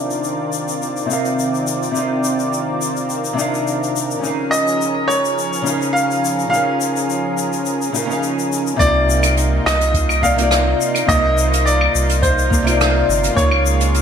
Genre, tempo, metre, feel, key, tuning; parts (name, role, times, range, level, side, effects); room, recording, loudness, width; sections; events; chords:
sunset chillout; 105 BPM; 4/4; straight; C phrygian; A4 = 440 Hz
nylon-string guitar; accompaniment; 0.0-14.0 s; C3 to F5; -21 LUFS; left 1 dB; auto-pan, low-pass filter, ping-pong delay
lush unison pad; sustained chords; 0.0-14.0 s; Db3 to D5; -23 LUFS; right 1 dB; chorus
soft brush drum kit; drums; 0.1-14.0 s; claves, hi-hat, rim click, shaker; -23 LUFS; left 3 dB; gated reverb
bright grand piano; melody; 4.5-14.0 s; C5 to F5; -19 LUFS; equal; ping-pong delay
warm sub bass; bass; 8.8-14.0 s; G1 to Db2; -18 LUFS; equal
electronic kick drum; drums; 8.8-13.5 s; -21 LUFS; equal
moderate plate reverb, RT60 1.6 s, studio ambience; bright 1980s-style digital production; -15 LUFS; side -7 dB against mid
0.0-8.8 A section; 8.8-14.0 B section
0.0 Cm11; 4.2 Db6; 8.8 Cm11; 13.4 Db6